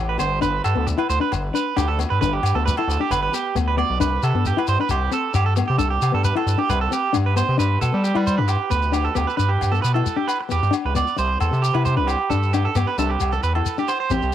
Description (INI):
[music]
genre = highlife guitar band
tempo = 134 BPM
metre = 4/4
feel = straight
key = G major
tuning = A4 = 440 Hz
[part]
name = gritty driven synth bass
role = bass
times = 0.0-14.3 s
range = G1 to G3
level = -21 LUFS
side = equal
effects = none
[part]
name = electric guitar at the edge of break-up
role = arpeggios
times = 0.1-14.3 s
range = G4 to D5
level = -23 LUFS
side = right 7 dB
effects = cassette tape, tape echo
[part]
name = fingerpicked plugged-in steel-string acoustic guitar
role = accompaniment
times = 0.2-14.3 s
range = B3 to E4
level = -26 LUFS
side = left 9 dB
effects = cassette tape
[part]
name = agogo bells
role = percussion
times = 0.2-14.0 s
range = none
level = -32 LUFS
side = left 10 dB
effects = none
[part]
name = shekere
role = percussion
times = 0.2-14.3 s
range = none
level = -29 LUFS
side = left 4 dB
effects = none
[sound]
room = light reverb, small room ambience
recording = home recording on cassette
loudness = -18 LUFS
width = side -11 dB against mid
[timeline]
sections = 0.0-7.6 A section; 7.6-14.3 B section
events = none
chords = 0.0 G; 4.0 Csus2; 7.6 G; 11.2 Cadd9